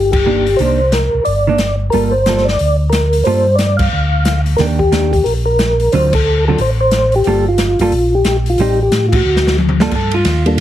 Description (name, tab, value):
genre	soul jazz organ trio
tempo	180 BPM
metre	4/4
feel	swing 63% on 8ths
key	G minor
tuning	A4 = 442 Hz
part	percussive tonewheel organ	melody	0.0-10.6 s	G3 to F5	-15 LUFS	equal	slow rotary speaker, chorus vibrato, plate reverb
part	mellow tonewheel organ	bass	0.0-10.6 s	F#1 to A2	-16 LUFS	equal	overdrive, chorus vibrato, slow rotary speaker
part	open jazz drum kit	drums	0.1-10.6 s	crash cymbal, hi-hat, kick drum, ride cymbal, snare drum, toms	-19 LUFS	left 1 dB	none
part	hollow-body jazz guitar	accompaniment	0.3-10.4 s	D3 to A4	-18 LUFS	right 4 dB	none
room	light reverb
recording	heavily compressed radio sound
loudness	-11 LUFS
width	side -12 dB against mid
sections	0.0-9.9 A section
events	band accent 0.1, 3.8, 6.1, 9.1; drum fill 9.3-9.9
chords	0.0 Cm9; 1.9 Gm9; 4.6 Ebmaj7; 5.9 D7#9; 7.3 Gm9; 8.6 Am7b5; 9.3 D; 9.9 G7sus2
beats	0.26 | 0.59 0.93 1.26 1.59 | 1.92 2.26 2.59 2.92 | 3.26 3.59 3.92 4.26 | 4.59 4.92 5.25 5.59 | 5.92 6.25 6.59 6.92 | 7.25 7.59 7.92 8.26 | 8.59 8.92 9.26 9.59 | 9.92 10.26 10.59